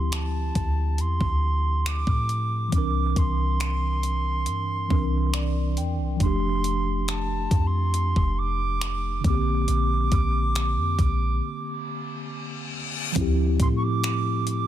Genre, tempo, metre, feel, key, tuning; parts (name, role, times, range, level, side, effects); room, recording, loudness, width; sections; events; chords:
contemporary R&B; 69 BPM; 4/4; straight; D minor; A4 = 440 Hz
silver concert flute; melody; 0.0-14.7 s; A5 to D6; -30 LUFS; right 4 dB; digital delay
mellow tine electric piano; accompaniment; 0.0-14.7 s; D3 to G5; -30 LUFS; equal; medium stereo tremolo
warm 808-style bass; bass; 0.0-14.6 s; F1 to A2; -25 LUFS; equal
gated 80s digital drum machine; drums; 0.1-14.7 s; finger snaps, hi-hat, kick drum; -25 LUFS; equal; overdrive
reverse cymbal; sound effects; 11.9-13.2 s; -34 LUFS; left 6 dB
little or no reverb; -22 LUFS; side -12 dB against mid
0.0-13.2 A section; 13.2-14.7 B section
tine electric piano fill 4.9-6.2; break 11.4-13.2; reverse cymbal 11.9-13.2
0.0 Dm11; 2.7 C9; 6.2 F69; 9.2 Bb69; 13.2 Dm11